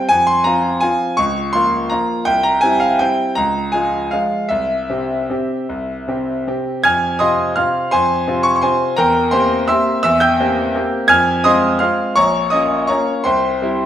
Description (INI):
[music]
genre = classical, piano waltz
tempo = 148-179 BPM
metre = 3/4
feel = rubato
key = F minor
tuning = A4 = 440 Hz
[part]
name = bright grand piano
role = solo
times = 0.0-13.9 s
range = Bb1 to Ab6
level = -14 LUFS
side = equal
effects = none
[sound]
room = moderate recital hall reverb, RT60 1.3 s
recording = minimal, uncompressed stereo recording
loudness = -14 LUFS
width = side -10 dB against mid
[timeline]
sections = 0.0-6.8 A section; 6.8-13.9 B section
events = none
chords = 0.1 Fm; 1.2 Bbm/Db; 2.3 C; 3.4 Db; 4.5 C; 6.8 Fm; 9.0 C7/E; 11.1 Fm; 12.2 Bbm; 13.3 C